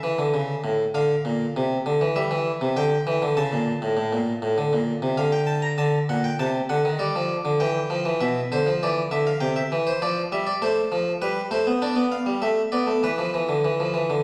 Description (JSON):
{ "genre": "classical, baroque-style two-part invention for harpsichord", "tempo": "99 BPM", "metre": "4/4", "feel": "straight", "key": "D minor, A minor from 10.6 s", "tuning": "A4 = 441 Hz", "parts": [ { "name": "harpsichord", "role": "solo", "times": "0.0-14.2 s", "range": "A2 to Bb5", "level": "-24 LUFS", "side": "equal", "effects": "none" } ], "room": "wet recital hall reverb, RT60 1.4 s", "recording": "none", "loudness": "-24 LUFS", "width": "mono", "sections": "0.9-5.8 A section; 5.8-14.2 B section", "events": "none", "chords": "0.0 A; 0.9 Dm; 2.2 Cadd9; 3.4 N.C.; 4.6 D5; 5.8 D7; 7.0 G5; 8.2 E5/B; 9.4 Cadd9; 10.6 Am; 11.8 Bdim; 13.0 E5", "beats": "0.34 | 0.95 1.56 2.16 2.76 | 3.36 3.96 4.57 5.17 | 5.78 6.39 7.00 7.60 | 8.20 8.81 9.41 10.01 | 10.61 11.21 11.81 12.41 | 13.02 13.64" }